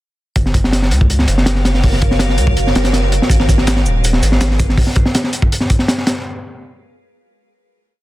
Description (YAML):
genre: drum and bass, jungle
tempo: 163 BPM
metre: 4/4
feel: straight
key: G# dorian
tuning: A4 = 440 Hz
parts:
  - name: granular cloud pad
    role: sustained chords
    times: 1.1-4.8 s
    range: F#4 to E#5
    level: -24 LUFS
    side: right 1 dB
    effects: built-in reverb
  - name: saturated sub bass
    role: bass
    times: 0.4-4.8 s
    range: D#1 to C#2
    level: -16 LUFS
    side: equal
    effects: none
  - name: crunchy breakbeat drum kit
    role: drums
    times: 0.4-6.2 s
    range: hi-hat, kick drum, snare drum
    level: -14 LUFS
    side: equal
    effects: none
  - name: electronic shaker and snare drum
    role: drums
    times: 3.3-4.7 s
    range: none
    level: -26 LUFS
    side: equal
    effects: high-pass filter on perc, high-pass filter on snare
room: studio reverb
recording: dense, heavily limited modern master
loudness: -12 LUFS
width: side -17 dB against mid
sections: 0.4-6.2 drop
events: drop 0.4-6.2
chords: 0.4 F#maj7; 3.3 G#m69